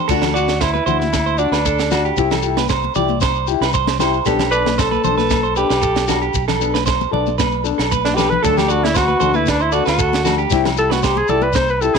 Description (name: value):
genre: highlife guitar band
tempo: 115 BPM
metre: 4/4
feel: straight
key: D mixolydian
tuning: A4 = 440 Hz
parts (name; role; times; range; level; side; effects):
- clean electric guitar; arpeggios; 0.0-12.0 s; F#4 to D5; -21 LUFS; right 14 dB; none
- nylon-string guitar; accompaniment; 0.1-12.0 s; F#3 to A4; -22 LUFS; left 14 dB; none
- fingered electric bass; bass; 0.1-12.0 s; B1 to D2; -23 LUFS; equal; none
- tight funk drum kit; drums; 0.1-12.0 s; crash cymbal, kick drum, snare drum; -22 LUFS; right 5 dB; none
- shekere; percussion; 0.1-12.0 s; none; -28 LUFS; left 9 dB; none
- agogo bells; percussion; 0.2-12.0 s; none; -28 LUFS; left 13 dB; none
- congas; percussion; 0.2-11.7 s; none; -26 LUFS; left 14 dB; none
- breathy alto saxophone; melody; 0.3-12.0 s; D4 to C5; -19 LUFS; equal; none
room: light reverb, studio reverb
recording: 1960s-style stereo with parts hard left and right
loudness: -14 LUFS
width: side -5 dB against mid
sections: 0.1-12.0 A section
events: alto saxophone solo 0.1-12.0; drum fill 7.9-8.4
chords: 0.1 D; 2.2 C; 4.3 Gadd9/B; 8.4 D; 10.5 C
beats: | 0.09 0.61 1.13 1.66 | 2.18 2.70 3.22 3.74 | 4.26 4.79 5.31 5.83 | 6.35 6.87 7.39 7.91 | 8.44 8.96 9.48 10.00 | 10.52 11.04 11.56